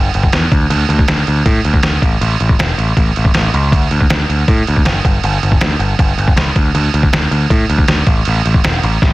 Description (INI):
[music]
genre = punk rock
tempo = 159 BPM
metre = 4/4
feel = straight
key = unclear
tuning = A4 = 440 Hz
[part]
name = growling picked electric bass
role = bass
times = 0.0-9.1 s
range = E1 to A2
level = -14 LUFS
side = equal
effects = overdrive
[part]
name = trip hop sampler-style drum kit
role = drums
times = 0.1-9.1 s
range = crash cymbal, kick drum, snare drum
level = -13 LUFS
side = equal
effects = none
[sound]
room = digital ambience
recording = dense, heavily limited modern master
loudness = -11 LUFS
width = side -19 dB against mid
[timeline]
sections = 0.0-9.1 A section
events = none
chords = none